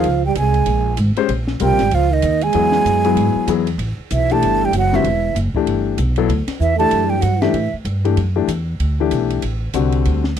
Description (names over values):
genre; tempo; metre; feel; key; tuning
modal jazz; 192 BPM; 4/4; swing 61% on 8ths; A dorian from 3.8 s; A4 = 440 Hz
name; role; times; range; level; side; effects
breathy mellow concert flute; melody; 0.0-7.7 s; Eb5 to A5; -19 LUFS; right 2 dB; none
breathy trombone; second line; 0.0-7.7 s; Eb3 to A3; -21 LUFS; right 21 dB; none
warm concert grand piano; accompaniment; 0.0-10.2 s; D3 to C5; -19 LUFS; left 13 dB; none
upright bass; bass; 0.0-10.4 s; E1 to A2; -19 LUFS; right 1 dB; none
compact cocktail drum kit; drums; 0.0-10.4 s; hi-hat, kick drum, ride cymbal, snare drum; -30 LUFS; equal; none
room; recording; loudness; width
little or no reverb; dry, close 1970s-style studio recording; -15 LUFS; side -8 dB against mid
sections
0.0-3.8 A section; 3.8-10.4 B section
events
none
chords
0.0 Bbm11; 2.5 Eadd9; 3.8 A9sus4